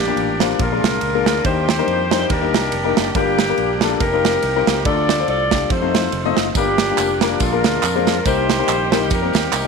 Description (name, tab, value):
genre	uptempo gospel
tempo	141 BPM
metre	4/4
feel	swing 57% on 8ths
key	Bb major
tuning	A4 = 443 Hz
part	mellow saxophone section	melody	0.0-9.7 s	Bb3 to D5	-20 LUFS	equal	none
part	clear grand piano	accompaniment	0.0-9.7 s	G2 to Eb5	-21 LUFS	left 12 dB	none
part	bright tonewheel organ	sustained chords	0.0-9.7 s	D3 to Ab4	-29 LUFS	right 10 dB	slow rotary speaker, chorus vibrato
part	fingered electric bass	bass	0.0-9.7 s	F1 to F2	-25 LUFS	equal	none
part	modern studio drum kit	drums	0.2-9.6 s	kick drum, ride cymbal, snare drum	-20 LUFS	right 7 dB	none
part	tambourine and handclaps	percussion	6.5-9.6 s	none	-26 LUFS	right 6 dB	none
room	moderate echo chamber reverb, RT60 1.4 s, small room ambience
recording	1960s-style stereo with parts hard left and right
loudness	-15 LUFS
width	side -4 dB against mid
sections	0.0-9.7 A section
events	none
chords	0.0 Bb6; 0.6 Bb7; 1.5 Ebmaj7; 3.2 Gm7; 4.0 F9sus4; 4.9 Dm; 5.7 F7; 6.6 Gm7; 7.4 Bb7; 8.3 Cm7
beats	0.17 0.60 1.03 | 1.45 1.88 2.30 2.73 | 3.15 3.58 4.00 4.43 | 4.86 5.28 5.71 6.13 | 6.56 6.98 7.41 7.83 | 8.26 8.68 9.11 9.53